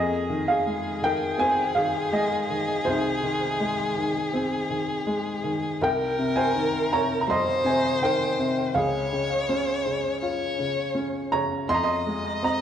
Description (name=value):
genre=acoustic folk-pop ballad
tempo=82 BPM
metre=4/4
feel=straight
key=unclear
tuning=A4 = 439 Hz
part: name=warm baby grand piano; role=melody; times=0.0-12.6 s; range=C2 to C6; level=-24 LUFS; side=equal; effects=tape echo
part: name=dark violin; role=second line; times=0.0-12.6 s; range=Ab4 to Eb5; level=-27 LUFS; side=left 1 dB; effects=none
room=wet large studio reverb, RT60 1.2 s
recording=nothing above 11.0 kHz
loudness=-23 LUFS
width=side -9 dB against mid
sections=0.0-12.6 A section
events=none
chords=0.0 Fm7; 5.8 Cm7; 8.7 Db; 11.7 Fm7